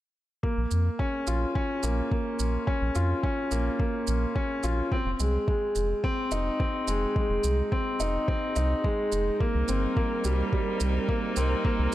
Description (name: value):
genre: piano and strings electronica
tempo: 107 BPM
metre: 4/4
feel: straight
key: Bb dorian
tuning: A4 = 439 Hz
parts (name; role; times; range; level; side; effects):
- clear upright piano; riff; 0.4-11.9 s; G3 to F4; -28 LUFS; equal; digital delay
- electronic kick drum; drums; 0.4-11.8 s; none; -28 LUFS; equal; overdrive, studio ambience
- round analog bass; bass; 0.6-11.9 s; F1 to F2; -27 LUFS; equal; sidechain pumping
- shaker; drums; 0.7-11.9 s; none; -39 LUFS; right 7 dB; overdrive, studio ambience
- dark string quartet; sustained chords; 9.4-11.9 s; G3 to Bb4; -32 LUFS; right 2 dB; none
room: light reverb, small room reverb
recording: dark, warm production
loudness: -25 LUFS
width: side -14 dB against mid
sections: 0.4-11.9 A section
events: none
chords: 0.4 Bbm; 4.9 Fm7; 9.4 Cm7